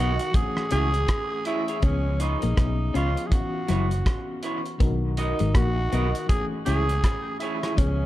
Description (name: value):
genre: lovers rock reggae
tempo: 81 BPM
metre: 4/4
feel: swing 60% on 16ths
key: unclear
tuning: A4 = 440 Hz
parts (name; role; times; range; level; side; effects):
- raspy tenor saxophone; melody; 0.0-8.1 s; C#4 to G#4; -29 LUFS; right 1 dB; tape echo
- FM electric piano with tremolo; accompaniment; 0.0-8.1 s; D#3 to A#4; -33 LUFS; left 3 dB; dub echo
- clean electric guitar; riff; 0.0-8.0 s; F#3 to C#4; -31 LUFS; left 6 dB; none
- electric guitar through a small old amp; stabs; 0.0-7.7 s; E4 to D#5; -33 LUFS; right 4 dB; none
- vintage muted fingered electric bass; bass; 0.0-8.1 s; F#1 to C#2; -24 LUFS; equal; none
- cloth-damped thuddy drum kit; drums; 0.2-8.0 s; hi-hat, kick drum, rim click; -25 LUFS; equal; none
room: studio reverb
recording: dark, warm production, lossy compression artefacts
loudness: -22 LUFS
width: side -14 dB against mid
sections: 0.0-8.1 A section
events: none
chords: 0.3 Amaj7; 1.8 C#7; 3.3 F#7sus4; 4.8 Bmaj7; 6.3 Amaj7